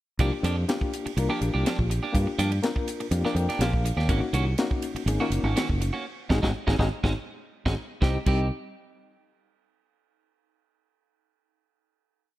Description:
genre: electric jazz fusion.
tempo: 123 BPM.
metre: 4/4.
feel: swing 54% on 16ths.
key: C minor.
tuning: A4 = 441 Hz.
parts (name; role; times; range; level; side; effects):
reed electric piano; accompaniment; 0.2-8.5 s; G3 to G5; -30 LUFS; left 3 dB; fast tremolo.
clean electric guitar; stabs; 0.2-8.5 s; Eb3 to G4; -32 LUFS; right 4 dB; wide subtle chorus.
fingered electric bass; bass; 0.2-8.5 s; Gb1 to G2; -25 LUFS; equal; none.
tight funk drum kit; drums; 0.2-8.4 s; crash cymbal, hi-hat, kick drum, ride cymbal, snare drum; -29 LUFS; equal; none.
room: light reverb, studio reverb.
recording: bright 1980s-style digital production.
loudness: -24 LUFS.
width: side -15 dB against mid.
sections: 0.2-8.0 groove; 8.0-10.0 final chord.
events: reed electric piano fill 3.1-4.1; band accent 6.0-8.0; drum fill 7.0-8.0.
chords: 0.2 C9sus4 (rootless); 4.1 Ab9sus4; 8.0 Cm.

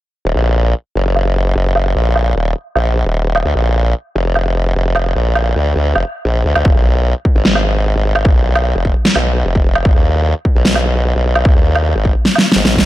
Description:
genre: heavy wobble dubstep.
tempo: 150 BPM.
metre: 4/4.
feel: half-time.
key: Eb harmonic minor.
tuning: A4 = 439 Hz.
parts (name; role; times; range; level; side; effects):
formant-sweep wobble bass; bass; 0.3-12.9 s; Eb1 to Eb2; -14 LUFS; equal; chorus, overdrive.
electronic woodblock and snare drum; drums; 1.2-12.9 s; none; -16 LUFS; right 1 dB; low-pass filter on perc, low-pass filter on snare.
electronic kick drum; drums; 6.7-12.8 s; none; -12 LUFS; equal; distortion.
room: light reverb.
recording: dark, warm production.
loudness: -12 LUFS.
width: side -15 dB against mid.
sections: 0.3-12.9 A section.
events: filter sweep on drum 0.3-12.9; drum fill 12.3-12.9.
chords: none.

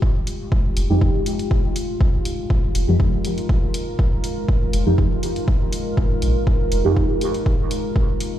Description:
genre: dub techno.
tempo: 121 BPM.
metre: 4/4.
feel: straight.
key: F minor.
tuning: A4 = 442 Hz.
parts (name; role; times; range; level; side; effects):
deep dark ambient pad; sustained chords; 0.0-8.4 s; Ab3 to Bb4; -26 LUFS; equal; chorus, built-in reverb, sidechain pumping.
electronic kick drum; drums; 0.0-8.1 s; none; -20 LUFS; equal; none.
electronic hi-hat; drums; 0.3-8.3 s; none; -34 LUFS; left 1 dB; none.
soft dub sub bass; bass; 0.8-6.9 s; F1 to F2; -20 LUFS; equal; tube saturation, sidechain pumping.
deep mellow chord stab; stabs; 0.9-7.2 s; F3 to G4; -24 LUFS; right 1 dB; chorus, phaser, dub echo.
room: little or no reverb.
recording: played on a big sound system in a bare room, large studio reverb.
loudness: -18 LUFS.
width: side -12 dB against mid.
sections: 0.0-8.4 A section.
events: none.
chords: 0.0 Fm9.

